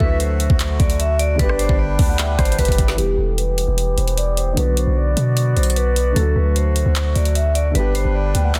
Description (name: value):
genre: hip hop, trap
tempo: 151 BPM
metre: 4/4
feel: half-time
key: E minor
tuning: A4 = 440 Hz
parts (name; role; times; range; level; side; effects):
- vibraphone with medium mallets; melody; 0.0-8.6 s; G4 to E5; -26 LUFS; equal; low-pass filter, digital delay
- soft octave-layered synth lead; second line; 0.0-2.6 s; D5 to G5; -32 LUFS; equal; chorus, digital delay
- felt-muted upright piano; accompaniment; 0.0-8.6 s; D3 to G5; -30 LUFS; equal; low-pass filter
- accordion; sustained chords; 0.0-8.6 s; D3 to D5; -32 LUFS; equal; low-pass filter
- warm 808-style bass; bass; 0.0-8.6 s; E1 to B2; -21 LUFS; equal; none
- trap drum kit; drums; 0.0-8.6 s; handclaps, hi-hat, kick drum, rim click, snare drum; -22 LUFS; equal; none
room: little or no reverb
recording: dense, heavily limited modern master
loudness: -18 LUFS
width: mono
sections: 0.0-3.0 A section; 3.0-8.6 B section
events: drum fill 2.6-3.0; filter sweep 3.0-8.6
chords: 0.0 D; 1.4 G; 3.0 Em; 4.6 Bm; 6.2 D; 7.8 G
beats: 0.20 0.60 1.00 | 1.39 1.79 2.19 2.59 | 2.98 3.38 3.78 4.17 | 4.57 4.97 5.37 5.76 | 6.16 6.56 6.96 7.35 | 7.75 8.15 8.55